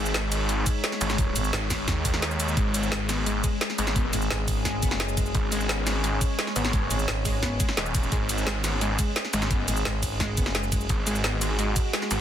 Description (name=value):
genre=dark technical drum and bass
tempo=173 BPM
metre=4/4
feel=straight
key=G# minor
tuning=A4 = 440 Hz
part: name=metallic inharmonic drone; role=sustained chords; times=0.0-12.2 s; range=G#3 to C#5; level=-32 LUFS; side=left 2 dB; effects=chorus, built-in reverb, sidechain pumping
part: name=snarling distorted saw bass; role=bass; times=0.0-12.2 s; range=D#1 to D#2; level=-27 LUFS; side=equal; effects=distortion, overdrive, sidechain pumping
part: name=drum and bass drum kit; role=drums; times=0.1-12.2 s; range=cabasa, hi-hat, ride cymbal, snare drum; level=-29 LUFS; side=right 1 dB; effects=overdrive
part: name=electronic kick drum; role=drums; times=0.7-11.8 s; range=none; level=-27 LUFS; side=equal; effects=none
part: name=growling FM bass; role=bass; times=1.4-1.5, 4.1-7.6, 9.7-10.9 s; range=F#1 to G#1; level=-29 LUFS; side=equal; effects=none
part: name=wide unison pluck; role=arpeggios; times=2.6-12.2 s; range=G#3 to B3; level=-33 LUFS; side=left 1 dB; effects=cassette tape, sidechain pumping, ping-pong delay
room=digital ambience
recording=dense, heavily limited modern master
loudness=-23 LUFS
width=side -10 dB against mid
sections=0.0-12.2 A section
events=kick drops out 2.2-2.6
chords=0.0 G#m